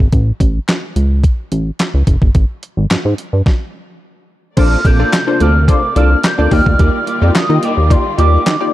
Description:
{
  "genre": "early-eighties boogie funk",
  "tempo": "108 BPM",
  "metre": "4/4",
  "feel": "straight",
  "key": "Bb major",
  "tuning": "A4 = 440 Hz",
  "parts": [
    { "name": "chorused synth bass", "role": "bass", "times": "0.0-8.6 s", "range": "Gb1 to Eb3", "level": "-12 LUFS", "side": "equal", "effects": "none" },
    { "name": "crisp 8-bit digital drum machine", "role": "drums", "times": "0.1-8.6 s", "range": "crash cymbal, handclaps, hi-hat, kick drum, snare drum", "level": "-14 LUFS", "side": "equal", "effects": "overdrive" },
    { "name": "group handclap", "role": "percussion", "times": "0.7-8.6 s", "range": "none", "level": "-27 LUFS", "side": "left 3 dB", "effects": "none" },
    { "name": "hollow clarinet-like synth lead", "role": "melody", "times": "4.6-8.7 s", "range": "C6 to G6", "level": "-18 LUFS", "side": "equal", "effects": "chorus" },
    { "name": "funky polysynth comp", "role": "accompaniment", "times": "4.6-8.7 s", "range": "Bb3 to Eb5", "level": "-18 LUFS", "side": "left 4 dB", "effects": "chorus" },
    { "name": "warm studio string section", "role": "sustained chords", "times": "4.6-8.7 s", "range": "C3 to D5", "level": "-26 LUFS", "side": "equal", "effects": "none" },
    { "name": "clean electric guitar", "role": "riff", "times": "4.6-8.6 s", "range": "Bb3 to D5", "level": "-22 LUFS", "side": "right 5 dB", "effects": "ensemble chorus" }
  ],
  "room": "digital ambience",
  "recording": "dark, warm production",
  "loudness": "-11 LUFS",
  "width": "side -15 dB against mid",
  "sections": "0.0-4.6 A section; 4.6-8.7 B section",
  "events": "stop 3.5-4.6",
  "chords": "0.1 A; 2.3 N.C.; 4.6 Bbmaj9; 6.5 Ebmaj9",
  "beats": "| 0.13 0.68 1.24 1.79 | 2.35 2.90 3.46 4.02 | 4.57 5.13 5.68 6.24 | 6.79 7.35 7.90 8.46"
}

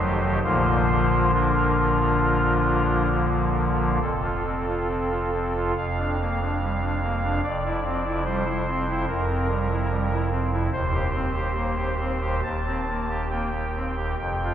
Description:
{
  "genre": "classical, chorale-style piece for pipe organ",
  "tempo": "66-74 BPM",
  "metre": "4/4",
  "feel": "rubato",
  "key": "Bb major",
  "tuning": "A4 = 440 Hz",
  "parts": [
    { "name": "pipe organ, soft reed", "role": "solo", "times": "0.0-14.5 s", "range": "Eb1 to A5", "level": "-22 LUFS", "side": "equal", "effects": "none" }
  ],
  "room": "wet church reverb, RT60 2.7 s",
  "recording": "heard from further back in the room",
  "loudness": "-22 LUFS",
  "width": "side -9 dB against mid",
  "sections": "0.0-4.0 A section; 4.0-14.5 B section",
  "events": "none",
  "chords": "0.4 Bb; 4.0 F; 5.8 Gm7/F (rootless); 7.4 C7/F; 10.7 Cm7/Eb",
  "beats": "| 0.43 1.34 2.24 3.14 | 4.03 4.89 5.76 6.61 | 7.44 8.26 9.08 9.90 | 10.72 11.56 12.44 13.30 | 14.19"
}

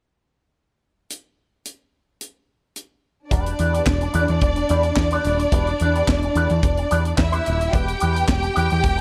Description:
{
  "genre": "disco",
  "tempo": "109 BPM",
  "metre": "4/4",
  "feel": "straight",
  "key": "E minor",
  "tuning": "A4 = 440 Hz",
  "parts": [
    { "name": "tight funk drum kit", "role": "drums", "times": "1.1-9.0 s", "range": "handclaps, hi-hat, kick drum, snare drum", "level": "-25 LUFS", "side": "equal", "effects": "none" },
    { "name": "warm symphonic violin section", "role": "second line", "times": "3.3-9.0 s", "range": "D4 to G5", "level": "-25 LUFS", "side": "equal", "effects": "none" },
    { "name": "electric guitar with an envelope filter", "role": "accompaniment", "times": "3.3-9.0 s", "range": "D4 to B4", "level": "-30 LUFS", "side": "equal", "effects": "wah" },
    { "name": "overdriven picked electric bass", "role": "bass", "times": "3.3-9.0 s", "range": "D#1 to E2", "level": "-24 LUFS", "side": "equal", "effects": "none" }
  ],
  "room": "light reverb, studio reverb",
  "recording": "dark, warm production",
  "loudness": "-20 LUFS",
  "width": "mono",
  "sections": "1.1-3.3 A section; 3.3-9.0 B section",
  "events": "none",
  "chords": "1.1 N.C.; 3.3 Em7",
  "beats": "| 1.10 1.66 2.21 2.76 | 3.31 3.87 4.42 4.97 | 5.52 6.08 6.63 7.18 | 7.74 8.29 8.84"
}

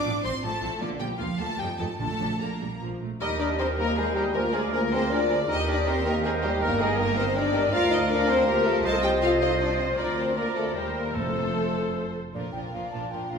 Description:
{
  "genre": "quick classical-period movement for symphony orchestra",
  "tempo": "145-163 BPM",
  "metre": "3/4",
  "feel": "rubato",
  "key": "Bb major, Eb major from 3.2 s, Bb major from 7.7 s",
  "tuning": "A4 = 440 Hz",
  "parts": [
    { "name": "rich studio violin section", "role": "melody", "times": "0.0-13.4 s", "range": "G4 to D6", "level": "-34 LUFS", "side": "left 3 dB", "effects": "none" },
    { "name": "dark studio violin section", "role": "second line", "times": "0.0-13.4 s", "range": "D4 to A5", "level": "-34 LUFS", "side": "left 2 dB", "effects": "none" },
    { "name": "rich studio cello section", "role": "bass", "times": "0.0-13.4 s", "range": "C2 to D4", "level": "-34 LUFS", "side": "right 3 dB", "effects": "none" },
    { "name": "warm studio viola section", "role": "accompaniment", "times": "0.1-13.4 s", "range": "D3 to Eb5", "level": "-32 LUFS", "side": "right 1 dB", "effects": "none" },
    { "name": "rich studio double bass section", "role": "bass", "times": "0.1-13.4 s", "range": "F1 to F2", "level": "-34 LUFS", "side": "right 3 dB", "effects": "none" },
    { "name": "timpani", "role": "percussion", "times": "2.0-2.6, 11.2-11.7 s", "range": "F2 to Bb2", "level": "-38 LUFS", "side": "right 2 dB", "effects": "none" },
    { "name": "bright oboe", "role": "second line", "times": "3.2-12.1 s", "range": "A4 to C5", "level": "-33 LUFS", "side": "equal", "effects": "none" },
    { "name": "concert flute", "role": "second line", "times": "3.2-13.4 s", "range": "C5 to Bb5", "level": "-36 LUFS", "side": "left 1 dB", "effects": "none" },
    { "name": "warm clarinet", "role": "second line", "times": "3.2-12.2 s", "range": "F4 to D5", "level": "-34 LUFS", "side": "equal", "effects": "none" },
    { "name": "mellow bassoon", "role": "accompaniment", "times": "3.2-12.1 s", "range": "Eb3 to G3", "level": "-32 LUFS", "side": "equal", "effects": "none" },
    { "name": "warm French horn section", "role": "sustained chords", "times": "3.2-12.5 s", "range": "F3 to A4", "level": "-28 LUFS", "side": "left 2 dB", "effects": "none" }
  ],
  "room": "wet recital hall reverb, RT60 1.3 s",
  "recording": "recorded in a church or concert hall",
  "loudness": "-23 LUFS",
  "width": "side -6 dB against mid",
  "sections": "0.0-3.2 A section; 3.2-12.3 B section; 12.3-13.4 A section",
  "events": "none",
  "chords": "0.0 F/A; 0.8 Bb; 1.6 F7; 2.0 Bb; 3.2 Eb; 4.4 Bb7/D; 5.5 Eb; 6.6 Eb/G; 7.7 Bb/D; 8.9 F7/C; 10.0 Bb/D; 10.8 Cm7/Eb; 11.2 F; 12.3 Bb",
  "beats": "0.06 0.44 | 0.81 1.20 1.59 | 2.00 2.41 2.81 | 3.21 3.60 3.98 | 4.35 4.73 5.12 | 5.49 5.87 6.24 | 6.62 6.99 7.36 | 7.73 8.10 8.48 | 8.85 9.22 9.60 | 9.98 10.36 10.75 | 11.15 11.56 11.95 | 12.35 12.74 13.12"
}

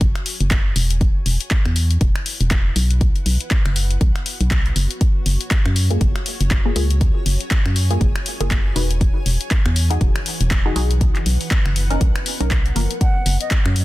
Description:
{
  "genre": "deep house",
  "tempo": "120 BPM",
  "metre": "4/4",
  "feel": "swing 58% on 16ths",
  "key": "F# major",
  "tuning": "A4 = 440 Hz",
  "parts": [
    { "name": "organ-like FM bass", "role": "bass", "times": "0.0-13.8 s", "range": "E1 to F#2", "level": "-18 LUFS", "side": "equal", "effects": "sidechain pumping" },
    { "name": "electronic kick drum", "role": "drums", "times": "0.0-13.6 s", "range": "none", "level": "-18 LUFS", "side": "equal", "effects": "small room ambience" },
    { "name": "house drum kit", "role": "drums", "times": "0.0-13.8 s", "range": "finger snaps, handclaps, hi-hat", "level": "-24 LUFS", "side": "left 2 dB", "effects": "soft clipping on snare, small room ambience" },
    { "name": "granular cloud pad", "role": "texture", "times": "0.1-13.8 s", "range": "E3 to G#5", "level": "-35 LUFS", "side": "right 1 dB", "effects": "built-in reverb, sidechain pumping" },
    { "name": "filtered dub chord stab", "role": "stabs", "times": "5.9-13.8 s", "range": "E#3 to B4", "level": "-27 LUFS", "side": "left 1 dB", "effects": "phaser, tape echo" },
    { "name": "mellow concert flute", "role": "melody", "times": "13.0-13.5 s", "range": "D#5 to F#5", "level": "-27 LUFS", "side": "equal", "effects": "tape echo" }
  ],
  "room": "digital ambience",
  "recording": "dense, heavily limited modern master",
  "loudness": "-16 LUFS",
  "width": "side -18 dB against mid",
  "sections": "0.0-13.8 A section",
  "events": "fade-in on ambient pad 0.0-13.8",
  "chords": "0.0 F#sus2; 0.8 Eadd9; 3.0 Bsus2; 5.0 F#maj9; 8.8 Emaj9; 11.0 Bmaj9; 13.0 F#maj7",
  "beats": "0.01 0.51 | 1.01 1.51 2.01 2.51 | 3.01 3.51 4.01 4.51 | 5.01 5.51 6.01 6.51 | 7.01 7.51 8.01 8.51 | 9.01 9.51 10.01 10.51 | 11.01 11.51 12.01 12.51 | 13.01 13.51"
}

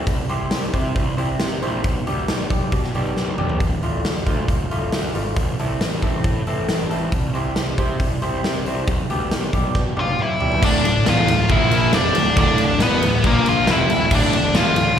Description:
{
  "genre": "quiet-loud alternative rock",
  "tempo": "137 BPM",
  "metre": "4/4",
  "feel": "straight",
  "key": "unclear",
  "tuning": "A4 = 440 Hz",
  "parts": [
    { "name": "electric guitar through a small old amp", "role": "arpeggios", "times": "0.0-10.6 s", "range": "A2 to C5", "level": "-27 LUFS", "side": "equal", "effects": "wide subtle chorus" },
    { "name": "fuzz picked electric bass", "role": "bass", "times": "0.1-15.0 s", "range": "D1 to C3", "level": "-24 LUFS", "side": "right 1 dB", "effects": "overdrive" },
    { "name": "big rock drum kit", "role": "drums", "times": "0.1-14.9 s", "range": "crash cymbal, hi-hat, kick drum, ride cymbal, snare drum, toms", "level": "-21 LUFS", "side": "equal", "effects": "none" },
    { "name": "nasal lead guitar with a parked wah", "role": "melody", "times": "10.0-15.0 s", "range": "Bb3 to F5", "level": "-19 LUFS", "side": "left 2 dB", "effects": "overdrive, slapback echo, tape echo" },
    { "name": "clear studio string section", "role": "sustained chords", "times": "10.6-15.0 s", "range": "F3 to Bb4", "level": "-30 LUFS", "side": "equal", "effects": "none" },
    { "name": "biting overdriven guitar", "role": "riff", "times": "10.6-14.9 s", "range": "D2 to Bb3", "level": "-27 LUFS", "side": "equal", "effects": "none" },
    { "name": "overdriven semi-hollow guitar", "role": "riff", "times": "10.6-14.9 s", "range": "D2 to Bb3", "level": "-24 LUFS", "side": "right 11 dB", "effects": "spring reverb, slapback echo" },
    { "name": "thick fuzz guitar", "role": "riff", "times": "10.6-14.9 s", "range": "D2 to Bb3", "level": "-22 LUFS", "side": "left 8 dB", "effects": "distortion" }
  ],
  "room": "studio reverb",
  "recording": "live gig heard through the venue's PA, recital hall reverb",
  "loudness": "-17 LUFS",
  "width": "side -9 dB against mid",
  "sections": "0.0-10.6 A section; 10.6-15.0 B section",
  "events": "drum fill 3.2-3.6, 9.8-10.6",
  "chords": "0.1 C; 1.8 G/B; 3.6 Dm; 5.4 Am; 7.1 C; 8.9 G/B; 10.6 Dm; 11.5 Bb5; 11.9 Dm; 13.2 Bb5; 13.7 Dm",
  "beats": "| 0.07 0.52 0.96 1.40 | 1.84 2.29 2.73 3.17 | 3.61 4.05 4.49 4.93 | 5.37 5.81 6.25 6.69 | 7.13 7.57 8.01 8.44 | 8.88 9.32 9.76 10.20 | 10.63 11.07 11.51 11.94 | 12.38 12.81 13.24 13.68 | 14.12 14.55 14.99"
}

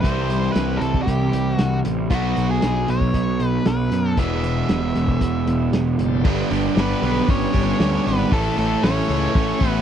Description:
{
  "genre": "classic rock",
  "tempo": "116 BPM",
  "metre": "4/4",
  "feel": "straight",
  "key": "unclear",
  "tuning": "A4 = 440 Hz",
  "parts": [
    { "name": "octave-fuzz lead guitar", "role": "melody", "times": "0.0-9.8 s", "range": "F#4 to E5", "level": "-27 LUFS", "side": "left 3 dB", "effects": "distortion, slapback echo" },
    { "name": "crunchy overdriven guitar", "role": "riff", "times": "0.0-9.8 s", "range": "E2 to A4", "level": "-23 LUFS", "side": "right 12 dB", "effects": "none" },
    { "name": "sludgy distorted guitar", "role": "riff", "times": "0.0-9.8 s", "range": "E2 to C4", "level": "-25 LUFS", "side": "left 11 dB", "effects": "overdrive" },
    { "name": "fuzz picked electric bass", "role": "bass", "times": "0.0-9.8 s", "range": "E1 to F#2", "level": "-24 LUFS", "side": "equal", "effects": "overdrive" },
    { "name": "vintage drum kit", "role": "drums", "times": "0.0-9.7 s", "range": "crash cymbal, hi-hat, kick drum, snare drum", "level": "-23 LUFS", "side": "equal", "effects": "none" },
    { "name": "bright tonewheel organ", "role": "sustained chords", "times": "5.9-9.8 s", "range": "D3 to F5", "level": "-35 LUFS", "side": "left 1 dB", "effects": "none" },
    { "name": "octave-fuzz lead guitar", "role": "second line", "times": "6.8-9.8 s", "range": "A3 to C#4", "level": "-27 LUFS", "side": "right 2 dB", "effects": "distortion" }
  ],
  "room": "little or no reverb",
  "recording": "dry, close 1970s-style studio recording",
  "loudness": "-18 LUFS",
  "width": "side -9 dB against mid",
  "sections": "0.0-6.3 A section; 6.3-9.8 B section",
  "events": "none",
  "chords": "0.0 C; 2.1 B; 4.2 E; 6.3 G; 8.3 A",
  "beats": "| 0.04 0.56 1.07 1.59 | 2.11 2.63 3.14 3.66 | 4.18 4.70 5.22 5.74 | 6.25 6.77 7.29 7.81 | 8.32 8.84 9.36"
}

